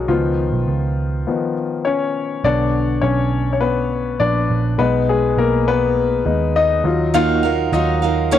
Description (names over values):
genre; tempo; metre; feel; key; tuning
piano-driven pop; 102 BPM; 4/4; straight; unclear; A4 = 441 Hz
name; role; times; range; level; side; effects
clear baby grand piano; accompaniment; 0.0-8.4 s; D3 to E#5; -18 LUFS; left 5 dB; cassette tape
vintage muted picked electric bass; bass; 0.0-8.4 s; A#1 to D#2; -20 LUFS; right 3 dB; none
picked steel-string acoustic guitar; riff; 7.1-8.4 s; D#3 to E#5; -18 LUFS; right 9 dB; cassette tape
room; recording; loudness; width
light reverb; home recording on cassette; -16 LUFS; side -10 dB against mid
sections
0.0-2.4 A section; 2.4-8.4 B section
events
grand piano solo 0.0-2.4, 2.4-8.4; stop 1.3-2.4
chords
0.1 C#7; 2.4 Bmadd9; 4.8 G#m/B; 6.9 D#madd9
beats
| 0.09 0.68 1.27 1.86 | 2.44 3.03 3.62 4.21 | 4.80 5.38 5.97 6.56 | 7.15 7.74 8.32